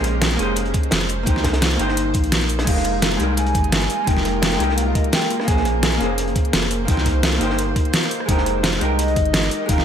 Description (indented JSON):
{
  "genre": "liquid drum and bass",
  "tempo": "171 BPM",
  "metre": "4/4",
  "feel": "straight",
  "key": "F minor",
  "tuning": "A4 = 440 Hz",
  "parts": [
    { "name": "vintage hollow-body jazz guitar", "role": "accompaniment", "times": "0.0-9.8 s", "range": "G3 to C5", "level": "-24 LUFS", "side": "left 1 dB", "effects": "dub echo" },
    { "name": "shimmering ambient pad", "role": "sustained chords", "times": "0.0-9.8 s", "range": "Ab3 to C5", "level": "-27 LUFS", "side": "equal", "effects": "chorus, built-in reverb" },
    { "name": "warm sub bass", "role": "bass", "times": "0.0-9.8 s", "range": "F1 to C2", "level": "-23 LUFS", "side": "equal", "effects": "tube saturation" },
    { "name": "crunchy breakbeat drum kit", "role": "drums", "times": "0.0-9.8 s", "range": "hi-hat, snare drum", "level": "-29 LUFS", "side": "equal", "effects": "high-pass filter on hats, high-pass filter on snare, high-pass filter on room" },
    { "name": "pop drum kit", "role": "drums", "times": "0.0-9.8 s", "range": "crash cymbal, hi-hat, rim click, snare drum", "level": "-22 LUFS", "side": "equal", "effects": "overdrive" },
    { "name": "electronic kick drum", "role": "drums", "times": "0.7-9.8 s", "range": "none", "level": "-20 LUFS", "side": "equal", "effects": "none" },
    { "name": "hollow clarinet-like synth lead", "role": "melody", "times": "2.7-9.8 s", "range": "C5 to Ab5", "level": "-26 LUFS", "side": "right 1 dB", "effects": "wide subtle chorus, dub echo" }
  ],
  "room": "light reverb",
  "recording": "none",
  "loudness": "-17 LUFS",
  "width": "side -8 dB against mid",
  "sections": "0.0-9.8 A section",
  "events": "none",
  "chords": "0.0 Bbm9; 1.3 Cm7; 2.7 Fm11; 5.5 Bbm9; 6.9 Cm7; 8.3 Fm11",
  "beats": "0.22 0.57 0.92 | 1.27 1.62 1.97 2.32 | 2.67 3.02 3.38 3.73 | 4.08 4.43 4.78 5.13 | 5.48 5.83 6.18 6.53 | 6.88 7.24 7.59 7.94 | 8.29 8.64 8.99 9.34 | 9.69"
}